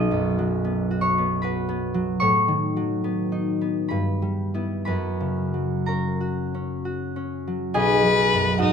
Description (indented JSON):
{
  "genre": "classical, romantic duo for violin and harp",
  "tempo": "59-77 BPM",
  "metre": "3/4",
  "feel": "rubato",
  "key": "B major",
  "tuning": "A4 = 436 Hz",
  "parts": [
    { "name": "concert harp", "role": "accompaniment", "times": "0.0-8.7 s", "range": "B1 to E6", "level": "-22 LUFS", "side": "equal", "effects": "none" },
    { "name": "rich violin", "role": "melody", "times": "7.8-8.7 s", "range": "D#4 to B4", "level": "-20 LUFS", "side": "left 4 dB", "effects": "none" }
  ],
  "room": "little or no reverb",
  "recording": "close, detailed microphones",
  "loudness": "-21 LUFS",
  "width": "side -7 dB against mid",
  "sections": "0.0-7.8 A section",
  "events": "none",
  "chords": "0.0 B; 2.2 B7/A; 3.9 Em/G; 4.9 F#; 7.8 B"
}